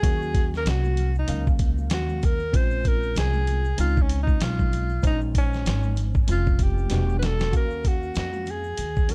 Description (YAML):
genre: hip hop, jazz-hop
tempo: 96 BPM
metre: 4/4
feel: swing 58% on 16ths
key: Eb dorian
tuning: A4 = 440 Hz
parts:
  - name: breathy alto saxophone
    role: melody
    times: 0.0-9.1 s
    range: Db4 to C5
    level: -32 LUFS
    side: equal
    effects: analog delay
  - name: tine electric piano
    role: accompaniment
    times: 0.0-9.1 s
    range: Gb3 to F5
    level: -36 LUFS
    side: equal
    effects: ensemble chorus
  - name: upright bass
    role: bass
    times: 0.0-9.1 s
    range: E1 to F2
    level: -28 LUFS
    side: equal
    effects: none
  - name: dusty soul sampler-style drum kit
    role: drums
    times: 0.0-9.1 s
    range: hi-hat, kick drum, snare drum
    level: -26 LUFS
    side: equal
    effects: none
  - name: egg shaker and congas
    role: percussion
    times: 0.0-9.1 s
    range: none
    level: -43 LUFS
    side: equal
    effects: none
room: little or no reverb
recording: dark, warm production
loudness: -24 LUFS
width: mono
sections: 0.0-7.5 A section; 7.5-9.1 B section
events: alto saxophone solo 0.0-7.5; drum fill 6.9-7.5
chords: 0.0 Ebm9; 2.5 Bbm9; 6.9 Em9; 7.5 Ebm9